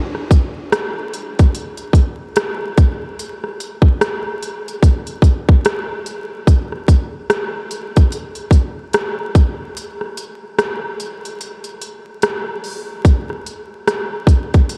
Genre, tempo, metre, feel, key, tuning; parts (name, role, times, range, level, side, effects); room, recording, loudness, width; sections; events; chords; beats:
hip hop; 73 BPM; 4/4; swing 59% on 16ths
garage drum kit; drums; 0.1-14.8 s; hi-hat, kick drum, rim click; -17 LUFS; equal
light reverb; vinyl crackle; -17 LUFS; mono
0.0-13.1 A section; 13.1-14.8 B section
break 9.8-13.1
0.72 1.54 2.37 | 3.19 4.01 4.83 5.65 | 6.47 7.30 8.12 8.94 | 9.76 10.58 11.41 12.23 | 13.05 13.87 14.69